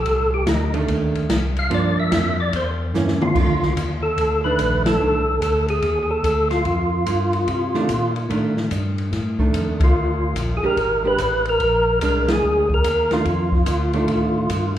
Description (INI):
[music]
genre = soul jazz organ trio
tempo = 146 BPM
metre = 4/4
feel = swing 65% on 8ths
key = F mixolydian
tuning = A4 = 440 Hz
[part]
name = percussive tonewheel organ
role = melody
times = 0.0-14.7 s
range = Eb4 to F5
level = -20 LUFS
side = equal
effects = slow rotary speaker, overdrive, chorus vibrato
[part]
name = tonewheel organ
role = bass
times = 0.0-14.8 s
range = Ab1 to C3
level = -23 LUFS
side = equal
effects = overdrive, slow rotary speaker
[part]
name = open jazz drum kit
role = drums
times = 0.1-14.8 s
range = crash cymbal, hi-hat, kick drum, ride cymbal, snare drum, toms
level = -25 LUFS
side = left 1 dB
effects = none
[part]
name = archtop guitar, miked and amplified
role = accompaniment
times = 0.7-5.2, 7.7-14.5 s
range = Eb3 to G4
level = -25 LUFS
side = right 3 dB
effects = none
[sound]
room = wet recital hall reverb, RT60 1.6 s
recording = recorded in a church or concert hall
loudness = -17 LUFS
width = side -11 dB against mid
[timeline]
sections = 0.0-3.4 A section; 3.4-14.8 B section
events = tonewheel organ solo 0.0-3.4; drum fill 2.9-3.4; band accent 4.8, 9.7, 12.2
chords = 0.1 Cm69; 1.7 Gm7; 2.5 Edim7; 3.4 F13; 9.9 Bb9; 13.3 F13